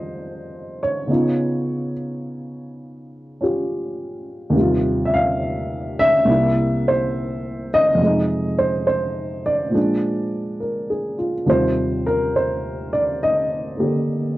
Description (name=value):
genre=solo jazz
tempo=69 BPM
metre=4/4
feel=swing 68% on 8ths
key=Eb major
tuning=A4 = 440 Hz
part: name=dark upright piano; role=solo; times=0.0-14.4 s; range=C2 to F5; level=-18 LUFS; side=equal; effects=cassette tape
room=light reverb, small room reverb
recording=home recording on cassette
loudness=-18 LUFS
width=side -16 dB against mid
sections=0.0-11.5 A section; 11.5-14.4 B section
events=upright piano solo 11.5-14.4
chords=0.0 Fm9; 1.1 Db9; 4.5 Eb69; 6.3 C7; 8.0 Fm7; 9.7 Bb7; 11.5 Eb69